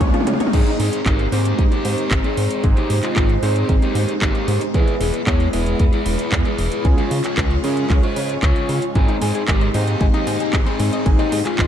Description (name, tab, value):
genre	italo disco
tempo	114 BPM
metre	4/4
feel	straight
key	Ab major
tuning	A4 = 440 Hz
part	string machine, full ensemble	sustained chords	0.0-11.7 s	Ab3 to Db6	-25 LUFS	equal	phaser, ensemble chorus
part	analog pluck	arpeggios	0.0-0.5, 9.0-11.7 s	F3 to Eb5	-28 LUFS	left 4 dB	chorus, tape echo
part	clear electric grand piano	stabs	0.0-11.7 s	Ab2 to C5	-28 LUFS	right 4 dB	vintage 12-bit sampler grit
part	chorused synth bass	bass	0.0-11.7 s	E1 to Db3	-21 LUFS	equal	none
part	electronic kick drum	drums	0.0-11.7 s	none	-18 LUFS	equal	none
part	house drum kit	drums	0.0-11.7 s	crash cymbal, handclaps, hi-hat, toms	-26 LUFS	equal	none
part	riser	sound effects	0.0-0.5 s	none	-27 LUFS	right 2 dB	none
part	dark smooth lead guitar	melody	0.5-11.7 s	Ab3 to Db5	-24 LUFS	left 2 dB	overdrive, ping-pong delay
room	light reverb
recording	dark, warm production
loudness	-16 LUFS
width	side -9 dB against mid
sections	0.5-11.7 A section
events	drum fill 0.0-0.5; riser 0.0-0.5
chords	0.0 Db; 0.5 Ab; 4.7 E; 6.8 Db; 9.0 Ab